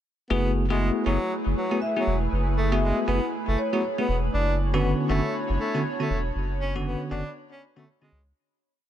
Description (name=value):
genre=deep house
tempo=119 BPM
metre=4/4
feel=swing 59% on 16ths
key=F# minor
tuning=A4 = 440 Hz
part: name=warm tenor saxophone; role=melody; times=0.3-8.2 s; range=F#3 to D4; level=-30 LUFS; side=equal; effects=ping-pong delay
part: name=airy breathy pad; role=sustained chords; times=0.7-8.3 s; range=A3 to C#5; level=-35 LUFS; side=left 1 dB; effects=chorus
part: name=bell-like tine electric piano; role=stabs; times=0.3-8.1 s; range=D3 to G#4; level=-28 LUFS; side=left 1 dB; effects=medium stereo tremolo, ping-pong delay
part: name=round analog bass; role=bass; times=0.3-8.3 s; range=E1 to C#2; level=-26 LUFS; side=equal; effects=none
part: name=warbly tape-like pad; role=texture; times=0.3-8.4 s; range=A3 to B5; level=-33 LUFS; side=right 2 dB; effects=chorus, built-in reverb
part: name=vibraphone with soft mallets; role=melody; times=1.8-4.0 s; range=C#5 to E5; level=-32 LUFS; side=left 1 dB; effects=digital delay
room=small room reverb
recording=none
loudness=-23 LUFS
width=side -11 dB against mid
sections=0.3-8.4 drop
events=drop 0.3-8.4; fade-out 5.7-8.4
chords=0.3 F#m11; 4.3 Bmadd9